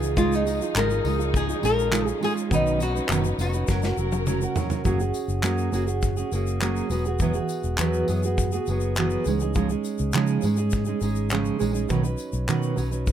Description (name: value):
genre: acoustic pop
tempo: 102 BPM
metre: 4/4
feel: straight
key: F# major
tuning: A4 = 439 Hz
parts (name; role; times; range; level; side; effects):
- flamenco guitar; melody; 0.0-4.5 s; D#4 to A#4; -27 LUFS; left 3 dB; none
- fingerpicked steel-string acoustic guitar; accompaniment; 0.0-13.1 s; B2 to B4; -25 LUFS; right 4 dB; none
- warm studio string section; sustained chords; 0.0-4.8 s; E#3 to A#4; -35 LUFS; left 4 dB; none
- vintage muted fingered electric bass; bass; 0.0-13.1 s; E1 to C#3; -26 LUFS; left 1 dB; none
- tube shaker; percussion; 0.0-13.1 s; none; -40 LUFS; left 9 dB; none
- natural country drum kit; drums; 0.2-13.1 s; handclaps, kick drum, snare drum, tambourine, toms; -28 LUFS; left 1 dB; none
room: little or no reverb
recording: none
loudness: -22 LUFS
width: side -10 dB against mid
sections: 0.0-4.9 A section; 4.9-13.1 B section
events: drum fill 3.7-4.9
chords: 0.0 C#add9; 2.5 Badd9; 3.7 F#; 4.9 F#add9; 6.9 Eadd9; 9.3 C#add9; 11.9 Badd9